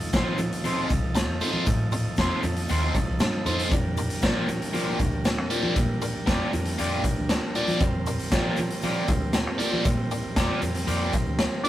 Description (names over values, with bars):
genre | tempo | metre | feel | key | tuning
psychedelic rock | 117 BPM | 4/4 | straight | unclear | A4 = 440 Hz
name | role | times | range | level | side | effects
overdriven combo organ | sustained chords | 0.0-11.7 s | F3 to Bb4 | -34 LUFS | right 2 dB | none
raw garage drum kit | drums | 0.0-11.7 s | hi-hat, kick drum, snare drum | -26 LUFS | equal | none
biting overdriven guitar | riff | 0.1-11.7 s | Bb3 to D5 | -28 LUFS | equal | phaser
fingered electric bass | bass | 0.1-11.5 s | C2 to F3 | -29 LUFS | equal | none
egg shaker | percussion | 0.1-11.7 s | none | -46 LUFS | left 5 dB | none
overdriven combo organ | melody | 11.6-11.7 s | D4 | -23 LUFS | equal | none
room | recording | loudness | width
light reverb | rough rehearsal-room recording | -23 LUFS | side -13 dB against mid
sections
0.0-11.7 A section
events
none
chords
0.0 F7; 3.7 Gm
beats
0.13 0.64 1.16 | 1.67 2.18 2.69 3.21 | 3.72 4.23 4.74 5.25 | 5.76 6.28 6.79 7.30 | 7.81 8.32 8.83 9.34 | 9.85 10.36 10.88 11.39